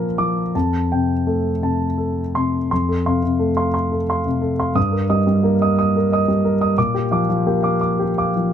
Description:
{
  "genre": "neoclassical minimalist piano",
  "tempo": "54-60 BPM (dotted quarters)",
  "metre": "6/8",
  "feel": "rubato",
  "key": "unclear",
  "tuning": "A4 = 441 Hz",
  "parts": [
    { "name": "dark concert grand piano", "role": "solo", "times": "0.0-8.5 s", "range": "F2 to Eb6", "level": "-17 LUFS", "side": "equal", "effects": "none" }
  ],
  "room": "light reverb",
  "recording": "close, detailed microphones",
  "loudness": "-17 LUFS",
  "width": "side -9 dB against mid",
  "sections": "0.0-2.7 A section; 2.7-8.5 B section",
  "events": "none",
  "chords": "0.0 Bb; 0.5 Fadd9; 2.7 F; 4.8 Eb/G; 6.8 Bb6"
}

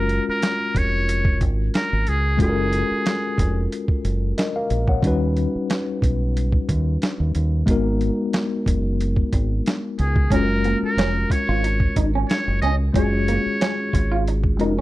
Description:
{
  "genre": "R&B, neo-soul",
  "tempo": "91 BPM",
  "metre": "4/4",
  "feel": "swing 54% on 16ths",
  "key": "F# major",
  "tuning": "A4 = 438 Hz",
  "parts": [
    { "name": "trumpet with metal mute", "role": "melody", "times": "0.0-3.7, 10.0-14.2 s", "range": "G#4 to D#5", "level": "-25 LUFS", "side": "equal", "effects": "slapback echo" },
    { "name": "mellow tine electric piano", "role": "accompaniment", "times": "0.0-14.8 s", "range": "G3 to F#5", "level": "-24 LUFS", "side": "left 3 dB", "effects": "medium stereo tremolo" },
    { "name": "deep dub fingered electric bass", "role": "bass", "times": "0.0-14.8 s", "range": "E#1 to D#2", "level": "-22 LUFS", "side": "equal", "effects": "none" },
    { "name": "boom bap sampler-style drum kit", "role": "drums", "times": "0.1-14.8 s", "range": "hi-hat, kick drum, snare drum", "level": "-22 LUFS", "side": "right 1 dB", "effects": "none" },
    { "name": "electric guitar through a small old amp", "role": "second line", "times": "10.3-14.8 s", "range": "A#3 to E#4", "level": "-27 LUFS", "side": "right 5 dB", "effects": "phaser" }
  ],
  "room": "digital ambience",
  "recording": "dry, close 1970s-style studio recording",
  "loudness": "-18 LUFS",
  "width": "side -17 dB against mid",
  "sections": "0.0-14.8 A section",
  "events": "none",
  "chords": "0.0 F#maj9; 5.0 D#7alt; 7.7 G#m9; 10.3 F#maj9"
}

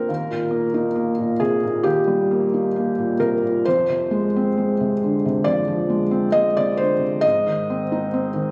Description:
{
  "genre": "neoclassical minimalist piano",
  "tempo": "67 BPM",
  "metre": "4/4",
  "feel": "rubato",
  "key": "F dorian",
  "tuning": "A4 = 440 Hz",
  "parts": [
    { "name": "felt-muted upright piano", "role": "solo", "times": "0.0-8.5 s", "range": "Eb2 to Eb5", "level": "-21 LUFS", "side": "equal", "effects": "none" }
  ],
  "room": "light reverb",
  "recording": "recorded on a phone in the room, club reverb, compression",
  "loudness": "-21 LUFS",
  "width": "mono",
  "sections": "0.0-8.5 A section",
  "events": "none",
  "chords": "0.1 Eb; 3.7 Fm; 7.2 Ab"
}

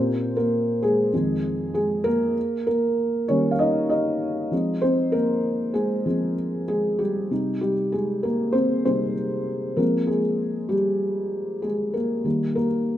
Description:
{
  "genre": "pop",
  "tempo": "97 BPM",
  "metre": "4/4",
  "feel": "straight",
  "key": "F minor",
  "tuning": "A4 = 440 Hz",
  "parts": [
    { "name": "felt-muted upright piano", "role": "solo", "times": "0.0-13.0 s", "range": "F2 to F5", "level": "-21 LUFS", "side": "equal", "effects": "none" }
  ],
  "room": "light reverb, small room ambience",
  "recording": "rough home demo mix",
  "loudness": "-21 LUFS",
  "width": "side -12 dB against mid",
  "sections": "0.0-2.4 A section; 2.4-13.0 B section",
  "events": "felt piano solo 0.0-2.4, 2.4-13.0",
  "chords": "0.0 Abmaj9/Bb; 1.1 Fm7; 2.4 Eb; 4.5 Fm; 7.3 Cm; 9.8 Fm; 12.3 Eb"
}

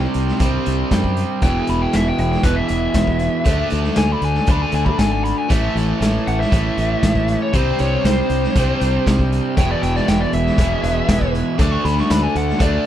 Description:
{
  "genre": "classic rock",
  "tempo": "118 BPM",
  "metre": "4/4",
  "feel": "straight",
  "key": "unclear",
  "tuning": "A4 = 439 Hz",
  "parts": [
    { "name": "bright tonewheel organ", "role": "sustained chords", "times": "0.0-12.9 s", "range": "D4 to D5", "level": "-33 LUFS", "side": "equal", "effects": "overdrive, slow rotary speaker" },
    { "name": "crunchy overdriven guitar", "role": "riff", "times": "0.0-12.9 s", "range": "E2 to D4", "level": "-21 LUFS", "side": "right 1 dB", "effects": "none" },
    { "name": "fingered electric bass", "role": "bass", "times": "0.0-12.8 s", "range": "E1 to F#2", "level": "-21 LUFS", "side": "equal", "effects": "none" },
    { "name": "raw garage drum kit", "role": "drums", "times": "0.1-12.7 s", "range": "hi-hat, kick drum, snare drum", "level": "-20 LUFS", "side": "equal", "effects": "none" },
    { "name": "biting lead guitar", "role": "melody", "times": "1.4-12.9 s", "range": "B4 to D6", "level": "-23 LUFS", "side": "left 1 dB", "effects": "overdrive" }
  ],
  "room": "little or no reverb",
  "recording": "none",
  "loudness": "-15 LUFS",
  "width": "side -11 dB against mid",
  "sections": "0.0-12.9 A section",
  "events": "lead electric guitar solo 0.0-12.9",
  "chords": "0.0 Csus2; 1.4 E; 3.5 D; 5.5 A; 7.5 Csus2; 9.6 E; 11.6 D"
}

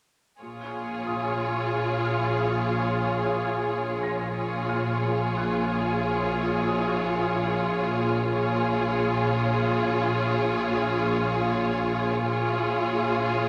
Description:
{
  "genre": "cinematic, suspense film score",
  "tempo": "91 BPM",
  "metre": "3/4",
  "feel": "straight",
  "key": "Bb minor",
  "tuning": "A4 = 442 Hz",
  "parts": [
    { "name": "warm symphonic violin section", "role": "melody", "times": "0.4-13.5 s", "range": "Db5", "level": "-38 LUFS", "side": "equal", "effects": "none" },
    { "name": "warm studio violin section", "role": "second line", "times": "0.4-13.5 s", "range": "Ab4", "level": "-32 LUFS", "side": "equal", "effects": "none" },
    { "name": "warm studio viola section", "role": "accompaniment", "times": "0.4-13.5 s", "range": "F4", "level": "-31 LUFS", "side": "equal", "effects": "none" },
    { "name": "warbly tape-like pad", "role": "sustained chords", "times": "1.0-13.5 s", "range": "F4 to F5", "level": "-35 LUFS", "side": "equal", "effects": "chorus, built-in reverb" },
    { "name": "rich studio double bass section", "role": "bass", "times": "0.4-13.5 s", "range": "Bb1", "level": "-36 LUFS", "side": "equal", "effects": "none" },
    { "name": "warm studio cello section", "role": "bass", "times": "0.4-13.5 s", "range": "Bb2", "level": "-35 LUFS", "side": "equal", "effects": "none" },
    { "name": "bowed-like drone", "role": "drone", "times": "1.1-13.5 s", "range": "Bb1", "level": "-36 LUFS", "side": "equal", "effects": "built-in reverb" },
    { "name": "warm grand piano", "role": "texture", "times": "1.1-13.5 s", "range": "F4 to Bb6", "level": "-42 LUFS", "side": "equal", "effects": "none" }
  ],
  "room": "wet scoring stage reverb, RT60 1.6 s",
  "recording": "none",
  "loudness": "-26 LUFS",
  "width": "mono",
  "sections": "0.4-13.5 A section",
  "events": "none",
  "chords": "0.4 Bbm7"
}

